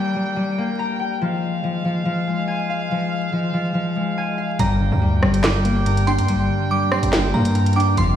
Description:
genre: hip hop, drill.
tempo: 142 BPM.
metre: 4/4.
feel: half-time.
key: G phrygian.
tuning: A4 = 437 Hz.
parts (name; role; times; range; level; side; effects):
clear brass ensemble; sustained chords; 0.0-8.2 s; G3 to G5; -28 LUFS; right 2 dB; none.
concert harp; arpeggios; 0.0-8.2 s; F3 to Bb5; -22 LUFS; left 3 dB; digital delay.
downlifter; sound effects; 0.0-1.2 s; none; -42 LUFS; right 2 dB; none.
glassy synth bell; second line; 4.6-8.2 s; Bb5 to D6; -26 LUFS; right 4 dB; chorus, digital delay.
muted felt-like synth keys; accompaniment; 4.6-8.2 s; F2 to D4; -21 LUFS; right 1 dB; chorus.
distorted 808-style bass; bass; 4.6-8.2 s; F1 to G2; -22 LUFS; equal; distortion.
drill drum kit; drums; 4.6-8.1 s; handclaps, hi-hat, rim click, snare drum; -24 LUFS; equal; none.
room: light reverb.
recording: played on a big sound system in a bare room, stone room reverb, vinyl crackle.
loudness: -18 LUFS.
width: side -10 dB against mid.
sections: 0.0-8.2 A section.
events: none.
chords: 0.0 Gm; 1.2 Fm7; 4.6 Gm.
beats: 0.37 0.79 | 1.21 1.64 2.06 2.48 | 2.90 3.33 3.75 4.17 | 4.59 5.02 5.44 5.86 | 6.28 6.71 7.13 7.55 | 7.97.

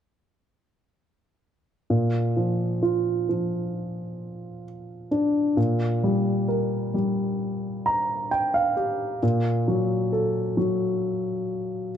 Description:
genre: pop.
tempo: 66 BPM.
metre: 4/4.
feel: straight.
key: unclear.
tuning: A4 = 440 Hz.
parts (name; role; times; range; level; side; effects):
warm grand piano; accompaniment; 1.9-12.0 s; Bb2 to Bb5; -23 LUFS; equal; none.
room: light reverb.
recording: none.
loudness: -22 LUFS.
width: side -9 dB against mid.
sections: 1.9-12.0 A section.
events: grand piano fill 7.4-9.2.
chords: 1.9 Bb; 5.6 Gm7/Bb; 9.2 Gb/Bb.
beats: | 1.90 2.82 3.75 4.66 | 5.58 6.49 7.41 8.32 | 9.22 10.13 11.04 11.96.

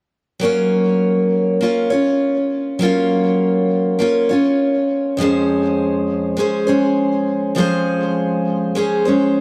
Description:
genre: pop.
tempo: 101 BPM.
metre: 4/4.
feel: straight.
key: unclear.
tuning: A4 = 442 Hz.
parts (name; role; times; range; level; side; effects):
picked steel-string acoustic guitar; solo; 0.4-9.4 s; F2 to Db5; -17 LUFS; equal; tape echo.
room: light reverb.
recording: dry, close 1970s-style studio recording.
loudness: -17 LUFS.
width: mono.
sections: 0.4-9.4 A section.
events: none.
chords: 0.4 Gbmaj7; 5.2 Dbmaj7/F.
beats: | 0.41 1.01 1.61 2.20 | 2.80 3.40 3.99 4.59 | 5.18 5.78 6.38 6.97 | 7.57 8.16 8.76 9.35.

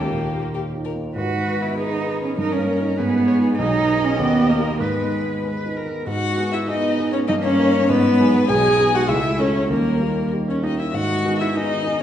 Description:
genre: quick classical-period movement for piano quartet.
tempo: 98 BPM.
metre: 2/4.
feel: rubato.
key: G# minor.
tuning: A4 = 439 Hz.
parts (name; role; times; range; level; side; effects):
dark violin; melody; 0.0-12.0 s; G4 to G#5; -25 LUFS; left 6 dB; none.
rich cello; second line; 0.0-12.0 s; D#3 to F#4; -23 LUFS; right 3 dB; none.
warm baby grand piano; accompaniment; 0.0-12.0 s; B1 to A#4; -23 LUFS; equal; none.
warm viola; accompaniment; 0.0-12.0 s; A#3 to D#5; -22 LUFS; right 1 dB; none.
room: wet recital hall reverb, RT60 1.5 s.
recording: heard from further back in the room, nothing above 10.4 kHz.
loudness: -18 LUFS.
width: side -10 dB against mid.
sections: 0.0-6.1 A section; 6.1-12.0 A section.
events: none.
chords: 0.0 D#; 1.2 G#m; 2.4 D#/G; 3.0 G#m; 3.6 G#m/B; 4.2 D#; 4.8 G#m; 7.3 D#/G; 7.9 G#m; 8.5 G#m/B; 9.1 A/C#; 9.7 D#; 10.9 G#m.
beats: 0.53 | 1.15 1.76 | 2.37 2.98 | 3.58 4.18 | 4.80 5.44 | 6.07 6.68 | 7.29 7.89 | 8.49 9.09 | 9.71 10.33 | 10.94 11.55.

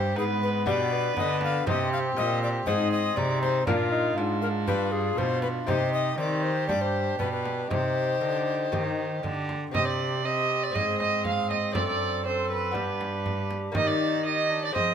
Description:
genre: classical, renaissance-style consort dance.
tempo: 120 BPM.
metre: 4/4.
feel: straight.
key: C minor.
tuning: A4 = 440 Hz.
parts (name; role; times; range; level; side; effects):
bright bass recorder; melody; 0.0-14.9 s; G4 to F5; -31 LUFS; left 5 dB; none.
dark violin; second line; 0.0-14.9 s; D4 to F5; -30 LUFS; right 4 dB; none.
lute; accompaniment; 0.0-14.9 s; F#2 to Eb5; -33 LUFS; left 5 dB; none.
rich cello; bass; 0.0-14.9 s; F#2 to F3; -31 LUFS; right 2 dB; none.
mellow bassoon; accompaniment; 0.2-14.9 s; G3 to F4; -33 LUFS; left 1 dB; none.
frame drum; percussion; 0.7-14.9 s; none; -34 LUFS; right 2 dB; none.
room: moderate stone room reverb, RT60 1.1 s.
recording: none.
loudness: -24 LUFS.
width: side -8 dB against mid.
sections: 0.0-9.7 A section; 9.7-14.9 B section.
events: none.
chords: 0.0 G; 1.7 C5; 2.7 Ab; 3.7 Bb; 4.7 G; 5.7 Cm; 6.7 G; 7.7 Cm; 9.7 C5; 10.8 Ab; 11.8 D7/F#; 12.8 G; 13.8 Eb.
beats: 0.16 0.67 1.17 | 1.67 2.17 2.67 3.17 | 3.67 4.17 4.67 5.18 | 5.68 6.18 6.69 7.19 | 7.70 8.21 8.72 9.24 | 9.75 10.25 10.75 11.25 | 11.76 12.26 12.76 13.26 | 13.76 14.26 14.76.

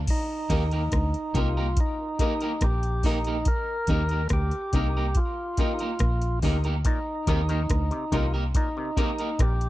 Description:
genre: roots reggae.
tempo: 71 BPM.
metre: 4/4.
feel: straight.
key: Eb major.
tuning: A4 = 439 Hz.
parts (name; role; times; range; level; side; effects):
deep dub fingered electric bass; bass; 0.0-9.7 s; Bb1 to Eb2; -26 LUFS; equal; none.
percussive tonewheel organ; melody; 0.1-9.7 s; Eb4 to Bb4; -30 LUFS; equal; overdrive, tape echo.
soft vintage rhythm box; drums; 0.1-9.7 s; crash cymbal, hi-hat, kick drum, rim click; -26 LUFS; equal; overdrive.
electric guitar at the edge of break-up; accompaniment; 0.5-9.3 s; Bb3 to Bb4; -33 LUFS; right 3 dB; tape echo.
dark upright piano; stabs; 0.5-9.2 s; Eb4 to Eb5; -33 LUFS; left 4 dB; none.
auto-wah clav; arpeggios; 6.8-9.5 s; Bb2 to Eb3; -36 LUFS; left 6 dB; none.
room: little or no reverb.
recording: dry, close 1970s-style studio recording.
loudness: -23 LUFS.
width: side -16 dB against mid.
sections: 0.1-9.7 A section.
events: none.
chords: 0.1 Eb.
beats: | 0.08 0.93 1.77 2.62 | 3.47 4.31 5.16 6.00 | 6.85 7.70 8.54 9.39.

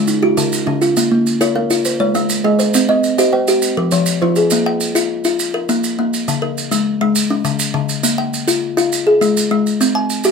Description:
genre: southern african traditional, mbira-style interlocking cycle.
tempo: 136 BPM (dotted quarters).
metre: 12/8.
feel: straight.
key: Bb equiheptatonic.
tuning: A4 = 439 Hz.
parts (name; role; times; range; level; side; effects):
kalimba; arpeggios; 0.0-10.3 s; Db3+43c to Ab5+29c; -15 LUFS; left 2 dB; none.
kalimba; arpeggios; 0.0-4.8 s; F3 to G5-43c; -18 LUFS; right 4 dB; none.
maracas; percussion; 0.1-10.3 s; none; -22 LUFS; right 6 dB; none.
room: moderate small room reverb, RT60 0.5 s.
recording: none.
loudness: -13 LUFS.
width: side -5 dB against mid.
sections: 0.0-4.5 A section; 4.5-10.3 B section.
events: none.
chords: 0.0 Db; 1.0 Bbm; 1.9 Ab; 2.7 Cm; 3.6 Fm; 4.5 Bb5; 6.3 Db5; 8.0 Bb5; 8.9 N.C.; 9.8 C5.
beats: 0.08 0.52 | 0.97 1.41 1.86 2.30 | 2.74 3.19 3.63 4.07 | 4.51 4.95 5.39 5.83 | 6.27 6.71 7.15 7.59 | 8.04 8.48 8.92 9.36 | 9.80 10.25.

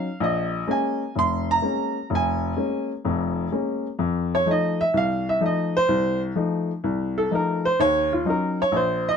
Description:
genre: solo jazz.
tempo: 127 BPM.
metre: 4/4.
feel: swing 68% on 8ths.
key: Bb minor.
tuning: A4 = 435 Hz.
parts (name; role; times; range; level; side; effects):
warm baby grand piano; solo; 0.0-9.2 s; F1 to C6; -21 LUFS; equal; none.
room: light reverb.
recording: close, detailed microphones.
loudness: -21 LUFS.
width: side -6 dB against mid.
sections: 0.0-9.2 A section.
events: grand piano solo 0.0-9.2.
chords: 0.2 Bbm7; 4.0 F7; 7.8 Ebm7.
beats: | 0.20 0.68 1.15 1.63 | 2.10 2.57 3.05 3.52 | 4.00 4.47 4.94 5.42 | 5.89 6.37 6.84 7.31 | 7.79 8.26 8.74.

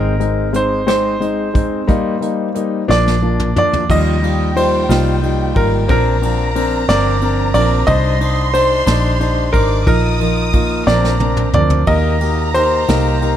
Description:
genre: six-eight pop ballad.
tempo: 60 BPM (dotted quarters).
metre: 6/8.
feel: straight.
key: Eb major.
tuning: A4 = 439 Hz.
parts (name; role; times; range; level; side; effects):
bright grand piano; melody; 0.0-13.4 s; Bb4 to Eb5; -19 LUFS; right 1 dB; none.
warm concert grand piano; accompaniment; 0.0-13.4 s; F3 to C5; -19 LUFS; left 5 dB; none.
fingerpicked steel-string acoustic guitar; arpeggios; 0.0-13.4 s; F3 to Ab4; -25 LUFS; right 9 dB; none.
vintage muted fingered electric bass; bass; 0.0-13.4 s; G1 to Eb2; -17 LUFS; equal; none.
soft brush drum kit; drums; 0.2-13.4 s; crash cymbal, hi-hat, kick drum, ride cymbal, rim click, snare drum, toms; -21 LUFS; equal; none.
warm symphonic violin section; second line; 3.9-13.4 s; G5 to Eb6; -24 LUFS; equal; none.
room: light reverb, studio reverb.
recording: dark, warm production.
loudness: -13 LUFS.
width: side -10 dB against mid.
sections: 0.0-3.9 A section; 3.9-13.4 B section.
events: drum fill 2.9-3.9, 10.9-11.9.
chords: 0.0 Ab; 1.9 Eb/Bb; 2.9 Bb; 3.9 Ebadd9; 5.9 Bbadd9; 7.9 Cmadd9; 9.9 Bbsus4; 10.9 Bbadd9; 11.9 Eb.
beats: 0.88 | 1.89 2.89 | 3.89 4.89 | 5.90 6.89 | 7.88 8.88 | 9.88 10.88 | 11.88 12.88.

